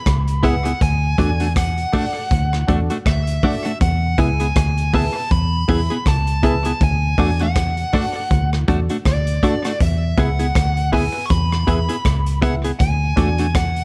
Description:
roots reggae; 80 BPM; 4/4; swing 58% on 16ths; E mixolydian; A4 = 440 Hz
dark smooth lead guitar; melody; 0.0-13.8 s; D5 to C#6; -27 LUFS; equal; overdrive, tape echo
vintage muted fingered electric bass; bass; 0.1-13.8 s; C#2 to E2; -22 LUFS; equal
crunchy breakbeat drum kit; drums; 0.1-13.8 s; hi-hat, kick drum, rim click; -24 LUFS; equal
clean electric guitar; accompaniment; 0.4-13.5 s; A3 to G#4; -24 LUFS; equal; tape echo
filtered dub chord stab; stabs; 0.4-13.4 s; D4 to E5; -29 LUFS; equal; chorus, plate reverb
light reverb; dark, warm production; -18 LUFS; mono
0.0-13.8 A section
0.0 E; 0.8 D; 3.8 E; 6.8 D; 9.8 E; 12.8 D

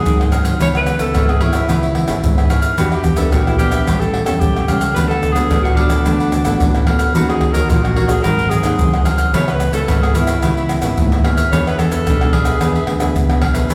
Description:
samba and choro; 110 BPM; 4/4; straight; A4 = 439 Hz
breathy tenor saxophone; second line; 0.0-13.2 s; D4 to C#5; -24 LUFS; equal
cavaquinho; accompaniment; 0.0-13.7 s; D4 to G#5; -29 LUFS; equal
nylon-string guitar; accompaniment; 0.0-13.7 s; G#2 to G#4; -25 LUFS; equal
fingered electric bass; bass; 0.0-13.7 s; G#1 to G#2; -23 LUFS; equal
egg shaker, surdo, pandeiro, tamborim and agogo bells; percussion; 0.1-13.7 s; -18 LUFS; equal
wet recital hall reverb, RT60 1.7 s; recorded in a church or concert hall; -15 LUFS; mono
0.0-13.7 A section
tenor saxophone solo 0.0-13.7
0.0 G#7; 0.6 C#m7; 2.8 Em7; 3.9 A7; 5.0 D6; 7.2 D#m7; 8.2 G#7; 9.3 C#m7; 11.5 E7

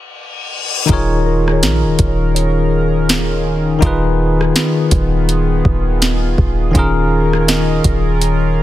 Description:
contemporary R&B; 82 BPM; 4/4; swing 58% on 16ths; A4 = 440 Hz
reverse cymbal; sound effects; 0.0-0.9 s; -22 LUFS; left 6 dB
barky tine electric piano; accompaniment; 0.9-8.6 s; Eb3 to Db5; -17 LUFS; left 3 dB; medium stereo tremolo
chorused pulse-width pad; sustained chords; 0.9-8.6 s; Eb3 to Bb4; -21 LUFS; right 1 dB; sidechain pumping
clean 808-style bass; bass; 0.9-8.6 s; Eb1 to Bb1; -17 LUFS; equal
smooth R&B drum kit; drums; 0.9-8.4 s; hi-hat, kick drum, rim click, snare drum; -17 LUFS; equal; overdrive
soft synth bell; texture; 1.3-8.2 s; Bb4 to F5; -29 LUFS; right 6 dB
digital ambience; dense, heavily limited modern master; -12 LUFS; side -14 dB against mid
0.9-8.6 A section
reverse cymbal 0.0-0.9; stop 0.0-0.9
0.0 N.C.; 0.9 Eb9sus4; 3.8 Abm6/Eb; 6.7 Eb9sus4

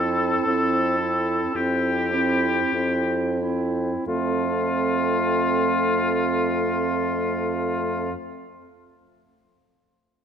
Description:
classical, slow romantic movement for wind quintet; 43-60 BPM; 4/4; rubato; F major; A4 = 443 Hz
clear oboe; second line; 0.0-8.1 s; F4 to A4; -25 LUFS; left 3 dB
clear French horn; accompaniment; 0.0-8.1 s; A3 to C4; -28 LUFS; equal
clear clarinet; accompaniment; 0.0-8.1 s; C4 to E4; -28 LUFS; right 6 dB
mellow bassoon; bass; 0.0-8.1 s; F2; -27 LUFS; right 1 dB
moderate concert hall reverb, RT60 2.4 s; dark, warm production; -20 LUFS; side -7 dB against mid
0.0-4.1 A section; 4.1-9.1 B section
slowing down 0.0-4.1
0.0 C/F; 4.1 F

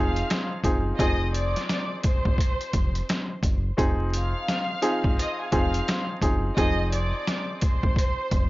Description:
hip hop, boom-bap hip-hop; 86 BPM; 4/4; swing 62% on 16ths; F dorian; A4 = 440 Hz
warm studio violin section; melody; 0.0-8.5 s; Ab4 to F6; -31 LUFS; equal; high-pass filter, low-pass filter, tape echo
warm upright piano; accompaniment; 0.0-8.5 s; F3 to Ab4; -28 LUFS; equal; cassette tape, high-pass filter, low-pass filter
deep dub fingered electric bass; bass; 0.0-8.5 s; F1 to Ab1; -27 LUFS; equal; tube saturation
trip hop sampler-style drum kit; drums; 0.2-8.5 s; hi-hat, kick drum, snare drum; -25 LUFS; equal; overdrive, vintage 12-bit sampler grit
light reverb; dry, gritty hardware recording, vinyl crackle, nothing above 7.4 kHz; -22 LUFS; side -19 dB against mid
0.0-8.5 A section
0.0 Fm7

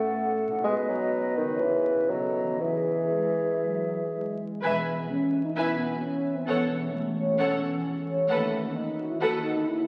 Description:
classical, dramatic, fast romantic movement for symphony orchestra; 116-133 BPM; 4/4; rubato; E major; A4 = 440 Hz
mellow hollow silver concert flute; second line; 0.0-4.4 s; D#5 to F#5; -36 LUFS; equal
warm clarinet; second line; 0.0-4.4 s; G#4 to B4; -35 LUFS; equal
dark bassoon; accompaniment; 0.0-4.4 s; D#3 to A3; -30 LUFS; equal
mellow French horn section; sustained chords; 0.0-9.9 s; C#3 to F#4; -33 LUFS; equal
concert harp; arpeggios; 0.0-9.9 s; A2 to E5; -35 LUFS; equal
warm symphonic violin section; melody; 4.6-9.4 s; F#5 to G#5; -40 LUFS; equal
warm symphonic violin section; second line; 4.6-9.4 s; B4 to E5; -37 LUFS; equal
clear symphonic viola section; accompaniment; 4.6-9.4 s; A4 to B4; -34 LUFS; equal
dark studio cello section; bass; 4.6-9.6 s; D#2 to B2; -41 LUFS; equal
warm symphonic double bass section; bass; 4.6-9.6 s; E1 to D#2; -42 LUFS; equal
wet concert hall reverb, RT60 2.1 s; very old 78 rpm record, vinyl crackle; -27 LUFS; mono
0.0-4.6 A section; 4.6-9.9 B section
0.0 F#m/A; 0.7 B; 1.6 C#m7; 2.1 B7; 2.6 E; 6.5 F#m7/E; 8.3 B7/D#

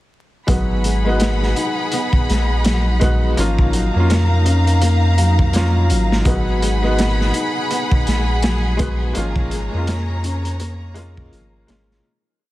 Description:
trip hop; 83 BPM; 4/4; swing 59% on 16ths; G# dorian; A4 = 440 Hz
bright upright piano; accompaniment; 0.5-12.1 s; G#3 to F#4; -25 LUFS; equal; tremolo, vintage 12-bit sampler grit, tape echo
warm symphonic violin section; sustained chords; 0.5-12.0 s; G#4 to B5; -24 LUFS; equal
felt-muted upright piano; arpeggios; 0.5-12.1 s; E#3 to D#4; -25 LUFS; left 2 dB; low-pass filter, tape echo
soft dub sub bass; bass; 0.5-12.0 s; G#1 to E#2; -18 LUFS; equal
crunchy breakbeat drum kit; drums; 0.5-12.0 s; hi-hat, kick drum, snare drum; -20 LUFS; equal; vintage 12-bit sampler grit
bowed-like drone; texture; 1.8-12.1 s; D#4; -32 LUFS; left 1 dB; built-in reverb
studio ambience; dense, heavily limited modern master, vinyl crackle; -15 LUFS; side -16 dB against mid
0.5-12.0 groove
filter sweep on felt piano 0.5-12.0; fade-out 8.2-12.0
0.5 G#m7; 3.4 F#maj7/G#; 6.3 G#m7; 9.2 A#m7/G#

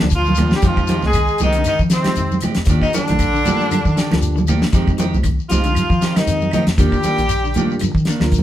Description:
afrobeat; 117 BPM; 4/4; swing 56% on 16ths; F dorian; A4 = 441 Hz
clear tenor saxophone; melody; 0.0-7.8 s; C4 to Ab4; -21 LUFS; left 1 dB
brilliant bass trombone; second line; 0.0-7.8 s; C3 to Ab3; -28 LUFS; left 3 dB
growling trumpet; second line; 0.0-7.8 s; C4 to Ab4; -29 LUFS; right 3 dB
electric guitar at the edge of break-up; arpeggios; 0.0-8.4 s; D3 to F3; -26 LUFS; left 5 dB
clean electric guitar; stabs; 0.0-8.2 s; Eb3 to G4; -24 LUFS; right 3 dB
deep dub fingered electric bass; bass; 0.0-8.4 s; Bb1 to F3; -21 LUFS; equal
claves; percussion; 0.0-8.3 s; -37 LUFS; right 6 dB
congas; percussion; 0.0-8.4 s; -22 LUFS; right 3 dB
shekere; percussion; 0.0-8.4 s; -27 LUFS; left 3 dB
damped 70s drum kit; drums; 0.1-8.4 s; hi-hat, kick drum, snare drum; -19 LUFS; equal
tine electric piano; accompaniment; 0.6-8.4 s; Ab3 to Bb4; -28 LUFS; right 3 dB
moderate studio reverb, RT60 0.6 s; band playing live in one room; -14 LUFS; side -12 dB against mid
0.0-8.4 A section
drum fill 8.2
0.0 Ebmaj7; 0.6 Fm9; 2.7 Ebmaj7; 4.7 Fm9; 6.8 Ebmaj7

